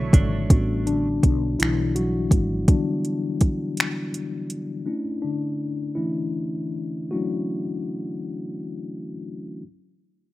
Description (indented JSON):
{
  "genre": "slow six-eight R&B",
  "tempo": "54 BPM (dotted quarters)",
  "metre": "6/8",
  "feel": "uneven beats",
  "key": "unclear",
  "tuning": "A4 = 440 Hz",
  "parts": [
    { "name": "clean electric guitar", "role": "second line", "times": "0.0-1.1 s", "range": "B2 to E4", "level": "-32 LUFS", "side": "right 6 dB", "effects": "harmonic tremolo" },
    { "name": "mellow tine electric piano", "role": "accompaniment", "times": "0.0-9.6 s", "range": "C#3 to C#5", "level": "-26 LUFS", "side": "left 2 dB", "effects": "slow stereo tremolo" },
    { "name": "chorused pulse-width pad", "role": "sustained chords", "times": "0.0-0.5 s", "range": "A4 to C#6", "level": "-42 LUFS", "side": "equal", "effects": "none" },
    { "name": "woody fretless electric bass", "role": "bass", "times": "0.0-2.6 s", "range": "G#1 to B1", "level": "-26 LUFS", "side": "equal", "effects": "none" },
    { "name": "smooth R&B drum kit", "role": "drums", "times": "0.1-4.7 s", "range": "finger snaps, hi-hat, kick drum", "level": "-18 LUFS", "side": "equal", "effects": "overdrive" }
  ],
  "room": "little or no reverb",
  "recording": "rough home demo mix",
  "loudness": "-22 LUFS",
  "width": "side -17 dB against mid",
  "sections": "0.5-9.6 A section",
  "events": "tine electric piano solo 0.5-9.6; slowing down 4.9-9.6",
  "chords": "0.5 A13sus4; 4.9 Dmaj9"
}